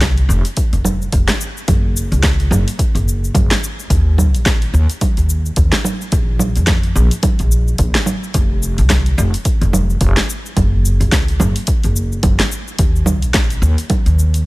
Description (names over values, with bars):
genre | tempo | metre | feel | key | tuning
organic downtempo | 108 BPM | 4/4 | swing 58% on 16ths | unclear | A4 = 440 Hz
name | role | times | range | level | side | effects
upright bass | bass | 0.0-14.4 s | F1 to F2 | -15 LUFS | equal | sidechain pumping
deep house drum kit | drums | 0.0-14.4 s | congas, hi-hat, shaker, snare drum | -19 LUFS | right 1 dB | studio reverb
electronic kick drum | drums | 0.0-14.0 s | none | -17 LUFS | equal | studio reverb
room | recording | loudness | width
little or no reverb | none | -13 LUFS | side -20 dB against mid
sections
0.0-14.5 A section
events
none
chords
none